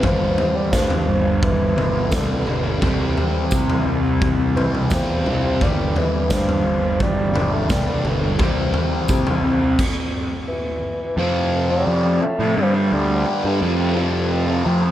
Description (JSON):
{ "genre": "psychedelic rock", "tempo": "86 BPM", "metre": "4/4", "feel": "straight", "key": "G dorian", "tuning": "A4 = 441 Hz", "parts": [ { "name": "mellow bassoon", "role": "melody", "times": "0.0-13.6 s", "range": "D3 to A3", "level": "-24 LUFS", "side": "equal", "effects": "analog delay" }, { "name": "tonewheel organ", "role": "sustained chords", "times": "0.0-14.9 s", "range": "F3 to F5", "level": "-34 LUFS", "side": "right 3 dB", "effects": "none" }, { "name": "fuzz guitar", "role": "riff", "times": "0.0-14.9 s", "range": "F2 to C4", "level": "-23 LUFS", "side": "equal", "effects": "distortion, phaser, analog delay" }, { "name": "fuzz picked electric bass", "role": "bass", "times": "0.0-14.9 s", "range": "G1 to C3", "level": "-22 LUFS", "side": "equal", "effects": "overdrive" }, { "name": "raw garage drum kit", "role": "drums", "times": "0.0-9.9 s", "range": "crash cymbal, kick drum, snare drum, toms", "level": "-21 LUFS", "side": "equal", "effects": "none" }, { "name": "tambourine", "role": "percussion", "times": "0.7-9.2 s", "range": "none", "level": "-38 LUFS", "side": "right 6 dB", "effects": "none" } ], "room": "moderate spring reverb, RT60 2.0 s, small room ambience", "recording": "echo-heavy mix", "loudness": "-17 LUFS", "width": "side -12 dB against mid", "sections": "0.0-11.2 A section; 11.2-14.9 B section", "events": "stop 9.8-11.2", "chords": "0.0 Gm7; 2.8 Csus4; 5.6 Gm7; 8.4 Csus4; 11.2 Fmaj7; 12.6 Gm7; 13.6 Fmaj7", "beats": "| 0.03 0.73 1.42 2.12 | 2.82 3.51 4.21 4.91 | 5.60 6.30 7.00 7.69 | 8.39 9.09 9.78 10.48 | 11.18 11.87 12.57 13.27 | 13.96 14.66" }